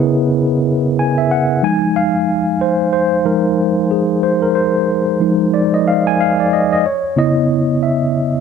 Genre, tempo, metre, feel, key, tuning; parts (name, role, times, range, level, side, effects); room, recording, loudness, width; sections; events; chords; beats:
R&B; 92 BPM; 4/4; swing 59% on 16ths; A4 = 439 Hz
mellow tine electric piano; solo; 0.0-8.4 s; Db3 to Ab5; -13 LUFS; equal; medium stereo tremolo
light reverb, digital ambience; dark, warm production; -13 LUFS; side -6 dB against mid
0.0-8.4 A section
tine electric piano solo 0.0-8.4
0.0 Dbm7; 1.6 Fm7; 6.8 Dbm9
0.31 0.96 | 1.62 2.27 2.92 3.57 | 4.22 4.88 5.53 6.18 | 6.83 7.49 8.14